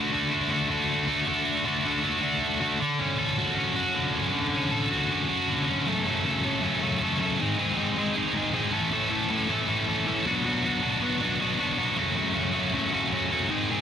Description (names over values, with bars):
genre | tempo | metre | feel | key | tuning
rock | 157 BPM | 4/4 | straight | unclear | A4 = 436 Hz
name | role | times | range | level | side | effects
scooped high-gain guitar | solo | 0.0-13.8 s | F#2 to A4 | -24 LUFS | equal | distortion
room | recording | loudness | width
little or no reverb | dry, close 1970s-style studio recording | -24 LUFS | side -8 dB against mid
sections
0.0-2.8 A section; 2.8-5.9 B section; 5.9-13.8 C section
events
none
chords
0.0 D; 2.8 Dmaj7; 5.9 F#m; 7.4 G#; 8.7 A; 10.3 Bm; 12.0 F#m